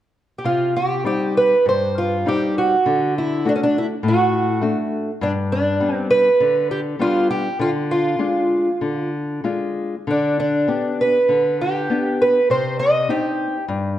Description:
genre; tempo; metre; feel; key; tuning
fado-style ballad; 100 BPM; 4/4; rubato; C harmonic minor; A4 = 440 Hz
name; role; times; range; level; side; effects
fingerpicked twelve-string acoustic guitar; melody; 0.4-13.6 s; Db4 to Eb5; -18 LUFS; right 1 dB; none
nylon-string guitar; accompaniment; 0.4-14.0 s; G2 to G4; -22 LUFS; left 2 dB; none
room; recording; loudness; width
moderate recital hall reverb, RT60 1.5 s; dark, warm production; -17 LUFS; side -12 dB against mid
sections
0.4-14.0 A section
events
none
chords
0.4 Cm; 2.9 D; 5.2 G; 7.6 Ddim; 10.1 G/D; 12.5 Cmadd9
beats
| 0.44 1.06 1.66 2.27 | 2.87 3.46 4.04 4.63 | 5.22 5.81 6.41 7.00 | 7.60 8.20 8.81 9.43 | 10.06 10.68 11.29 11.89 | 12.50 13.09 13.68

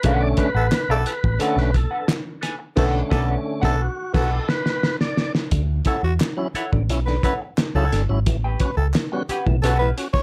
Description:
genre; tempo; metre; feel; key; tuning
funk; 88 BPM; 4/4; straight; B minor; A4 = 440 Hz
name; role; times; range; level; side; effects
semi-hollow electric guitar; accompaniment; 0.0-10.2 s; C#4 to G#5; -30 LUFS; equal; wah
tonewheel organ; stabs; 0.0-10.1 s; A2 to D5; -28 LUFS; equal; overdrive, fast rotary speaker
picked electric bass; bass; 0.0-9.9 s; G1 to E2; -23 LUFS; equal; none
cloth-damped thuddy drum kit; drums; 0.0-10.2 s; crash cymbal, hi-hat, kick drum, snare drum; -25 LUFS; equal; none
growling tenor saxophone; second line; 0.6-10.2 s; E4 to C#5; -28 LUFS; equal; none
group handclap; percussion; 0.7-9.1 s; none; -38 LUFS; equal; none
room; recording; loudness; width
light reverb; none; -21 LUFS; mono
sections
0.0-5.5 A section; 5.5-10.2 B section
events
tonewheel organ solo 0.0-5.5; drum fill 2.8-5.5; band accent 2.8-5.5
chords
0.0 Bm7; 5.5 Dmaj9; 8.3 A13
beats
| 0.04 0.73 1.41 2.10 | 2.78 3.47 4.15 4.84 | 5.52 6.21 6.89 7.58 | 8.26 8.95 9.63

